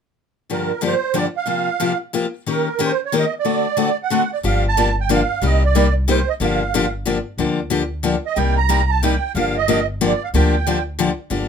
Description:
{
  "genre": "acoustic string swing (jazz manouche)",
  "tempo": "183 BPM",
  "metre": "3/4",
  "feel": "swing 60% on 8ths",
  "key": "G minor",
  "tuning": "A4 = 443 Hz",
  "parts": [
    { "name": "musette accordion", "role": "melody", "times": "0.5-10.8 s", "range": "Bb4 to Bb5", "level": "-21 LUFS", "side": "right 9 dB", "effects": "none" },
    { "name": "picked steel-string acoustic guitar", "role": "accompaniment", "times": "0.5-11.5 s", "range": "G2 to Bb4", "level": "-20 LUFS", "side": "left 5 dB", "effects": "none" },
    { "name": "upright bass", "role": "bass", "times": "4.4-11.5 s", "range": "G1 to D2", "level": "-20 LUFS", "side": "equal", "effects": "none" }
  ],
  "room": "light reverb",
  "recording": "minimal, uncompressed stereo recording",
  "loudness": "-17 LUFS",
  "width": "side -7 dB against mid",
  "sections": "0.5-4.4 A section; 4.4-11.5 B section",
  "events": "none",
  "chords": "0.5 Gm7; 1.5 C7sus4; 2.5 Eb7; 3.5 D7; 4.4 Gm7; 5.4 Cm7; 6.4 Gm7; 8.4 Cm7; 9.3 Gm7"
}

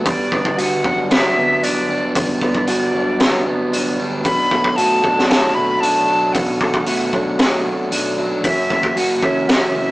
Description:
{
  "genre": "rock, shoegaze and dream pop",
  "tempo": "114 BPM",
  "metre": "4/4",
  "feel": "straight",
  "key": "unclear",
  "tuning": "A4 = 440 Hz",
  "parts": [
    { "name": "electric guitar through a small old amp", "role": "riff", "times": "0.0-9.9 s", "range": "F#2 to F#4", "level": "-20 LUFS", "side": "right 1 dB", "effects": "none" },
    { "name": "overdriven semi-hollow guitar", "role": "riff", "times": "0.0-9.9 s", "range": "F#2 to D4", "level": "-27 LUFS", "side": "left 2 dB", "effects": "none" },
    { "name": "fuzz picked electric bass", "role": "bass", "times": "0.0-9.9 s", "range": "F#1 to B1", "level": "-28 LUFS", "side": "equal", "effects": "overdrive" },
    { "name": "breathy bright jazz flute", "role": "melody", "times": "0.1-9.9 s", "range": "D5 to B5", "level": "-20 LUFS", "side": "equal", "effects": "none" },
    { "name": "raw garage drum kit", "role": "drums", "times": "0.1-9.6 s", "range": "hi-hat, kick drum, snare drum", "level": "-19 LUFS", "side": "equal", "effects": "none" }
  ],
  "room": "moderate stone room reverb, RT60 1.4 s",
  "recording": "rough rehearsal-room recording, tube saturation, small speaker sound",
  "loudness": "-15 LUFS",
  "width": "side -19 dB against mid",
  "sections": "0.0-9.9 A section",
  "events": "none",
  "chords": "0.1 Gmaj7; 4.3 Bm7; 8.4 F#7"
}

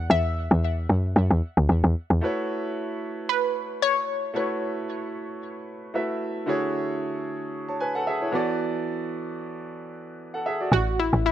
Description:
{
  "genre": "amapiano",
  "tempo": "113 BPM",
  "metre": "4/4",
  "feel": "swing 55% on 16ths",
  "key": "A major",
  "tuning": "A4 = 440 Hz",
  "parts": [
    { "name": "analog pluck", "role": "melody", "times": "0.0-6.2, 10.7-11.3 s", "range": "E4 to F#5", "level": "-26 LUFS", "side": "left 1 dB", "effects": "chorus, ping-pong delay" },
    { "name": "woody log drum bass", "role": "bass", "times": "0.0-2.2, 10.7-11.3 s", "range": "A1 to F#2", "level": "-20 LUFS", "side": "equal", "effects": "none" },
    { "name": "clear baby grand piano", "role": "accompaniment", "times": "2.2-10.9 s", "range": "D3 to A5", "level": "-27 LUFS", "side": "right 1 dB", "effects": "none" }
  ],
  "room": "light reverb, studio reverb",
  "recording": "none",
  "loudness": "-23 LUFS",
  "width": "side -11 dB against mid",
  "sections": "0.0-2.2 A section; 2.2-10.7 B section",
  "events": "drop 0.0-2.2",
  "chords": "0.0 Esus2; 2.2 A69; 6.5 Dmaj9#11; 8.3 E9sus4; 10.7 A5"
}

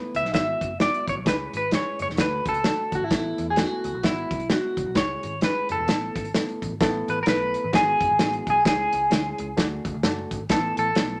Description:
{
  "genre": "uptempo 1960s-style soul",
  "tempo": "130 BPM",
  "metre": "4/4",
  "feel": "swing 60% on 8ths",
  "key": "A major",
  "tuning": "A4 = 441 Hz",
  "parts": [
    { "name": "bright reed electric piano", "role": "accompaniment", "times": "0.0-11.2 s", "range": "F#3 to B4", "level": "-35 LUFS", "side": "equal", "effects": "none" },
    { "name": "vintage muted picked electric bass", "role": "bass", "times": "0.1-11.2 s", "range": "E1 to E2", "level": "-37 LUFS", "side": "equal", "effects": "none" },
    { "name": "warm soul drum kit", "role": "drums", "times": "0.1-11.1 s", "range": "hi-hat, kick drum, snare drum", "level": "-27 LUFS", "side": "equal", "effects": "none" },
    { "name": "clean electric guitar", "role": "melody", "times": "0.2-11.2 s", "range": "E4 to E5", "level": "-27 LUFS", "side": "equal", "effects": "spring reverb" }
  ],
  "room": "light reverb",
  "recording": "none",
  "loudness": "-24 LUFS",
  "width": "mono",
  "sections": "0.0-6.8 A section; 6.8-11.2 B section",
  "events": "none",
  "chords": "0.3 Eadd9; 1.3 C#m; 2.2 D; 3.1 Asus2; 4.0 Eadd9/G#; 5.0 C#m; 5.9 Asus2; 7.7 Eadd9; 8.7 C#m; 9.6 D; 10.5 Asus2"
}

